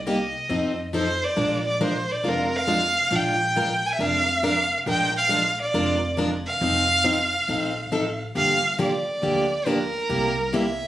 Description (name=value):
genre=acoustic string swing (jazz manouche)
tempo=138 BPM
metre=4/4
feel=swing 64% on 8ths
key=unclear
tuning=A4 = 440 Hz
part: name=upright bass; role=bass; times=0.0-10.8 s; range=F1 to F2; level=-32 LUFS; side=right 1 dB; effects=none
part: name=warm violin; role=melody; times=0.1-10.9 s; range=Bb4 to Ab5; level=-23 LUFS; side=right 1 dB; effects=none
part: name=picked plugged-in steel-string acoustic guitar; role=accompaniment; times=0.1-10.7 s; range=C3 to Bb4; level=-25 LUFS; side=left 1 dB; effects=none
room=moderate studio reverb, RT60 0.5 s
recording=recorded on a phone in the room, studio reverb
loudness=-20 LUFS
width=side -13 dB against mid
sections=0.0-10.9 A section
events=none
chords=0.5 F7; 1.4 Bb7; 6.6 F7; 8.4 Gm7; 10.1 C7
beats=0.06 0.49 0.93 | 1.37 1.81 2.25 2.68 | 3.12 3.56 3.99 4.43 | 4.87 5.30 5.74 6.18 | 6.61 7.05 7.48 7.92 | 8.36 8.79 9.23 9.66 | 10.10 10.53